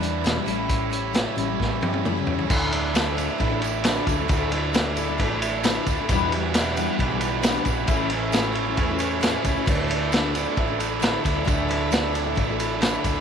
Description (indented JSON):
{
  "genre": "folk rock and heartland rock",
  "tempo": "134 BPM",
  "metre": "4/4",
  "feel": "straight",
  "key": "unclear",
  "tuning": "A4 = 440 Hz",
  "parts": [
    { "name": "picked twelve-string acoustic guitar", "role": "accompaniment", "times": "0.0-13.2 s", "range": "E2 to E4", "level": "-28 LUFS", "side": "left 12 dB", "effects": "none" },
    { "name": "hand-pumped harmonium", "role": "sustained chords", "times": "0.0-13.2 s", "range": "C#4 to D5", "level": "-34 LUFS", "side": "right 5 dB", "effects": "none" },
    { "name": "biting overdriven guitar", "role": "riff", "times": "0.0-13.2 s", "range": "E2 to E4", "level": "-28 LUFS", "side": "right 14 dB", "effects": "none" },
    { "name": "hollow-body short-scale fingered electric bass", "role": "bass", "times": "0.0-13.1 s", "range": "A1 to G2", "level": "-30 LUFS", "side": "equal", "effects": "none" },
    { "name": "vintage drum kit", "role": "drums", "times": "0.0-13.1 s", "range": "crash cymbal, hi-hat, kick drum, ride cymbal, snare drum, toms", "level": "-24 LUFS", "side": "equal", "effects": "none" },
    { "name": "tambourine", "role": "percussion", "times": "2.5-13.2 s", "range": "none", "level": "-40 LUFS", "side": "right 14 dB", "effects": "none" }
  ],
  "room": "light reverb, small room ambience",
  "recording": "1960s-style stereo with parts hard left and right",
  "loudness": "-21 LUFS",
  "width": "side -7 dB against mid",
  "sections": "0.0-2.5 A section; 2.5-13.2 B section",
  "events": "drum fill 1.6-2.5",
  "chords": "0.5 A7; 2.5 Dsus2; 6.1 Em7; 7.9 A; 9.7 Dsus2"
}